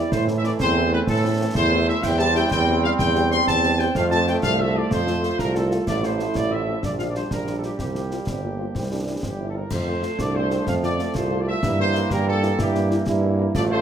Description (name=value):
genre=military-style march for wind band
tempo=125 BPM (dotted quarters)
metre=6/8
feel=straight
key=F major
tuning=A4 = 441 Hz
part: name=dark trumpet section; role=melody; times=0.0-13.8 s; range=G4 to C6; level=-25 LUFS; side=left 1 dB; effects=none
part: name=warm euphonium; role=second line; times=0.0-13.8 s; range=A3 to G4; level=-27 LUFS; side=right 4 dB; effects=none
part: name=warm trombone section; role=sustained chords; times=0.0-13.8 s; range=E3 to C4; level=-29 LUFS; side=right 3 dB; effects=none
part: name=clear tuba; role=bass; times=0.0-13.8 s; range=G1 to A2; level=-24 LUFS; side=right 2 dB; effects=none
part: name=concert snare drum, concert bass drum and clash cymbals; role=drums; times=0.1-13.7 s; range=none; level=-30 LUFS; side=left 1 dB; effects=none
part: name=mellow French horn section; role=accompaniment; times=0.3-13.8 s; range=G3 to A4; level=-32 LUFS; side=left 6 dB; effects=none
room=wet large studio reverb, RT60 1.4 s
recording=none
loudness=-19 LUFS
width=side -8 dB against mid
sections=0.0-9.7 A section; 9.7-13.8 B section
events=none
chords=0.1 Am; 2.0 C/E; 4.0 F; 5.9 F/A; 6.8 Gm7/Bb; 7.8 Csus4; 8.7 C; 9.7 F; 11.6 Edim/G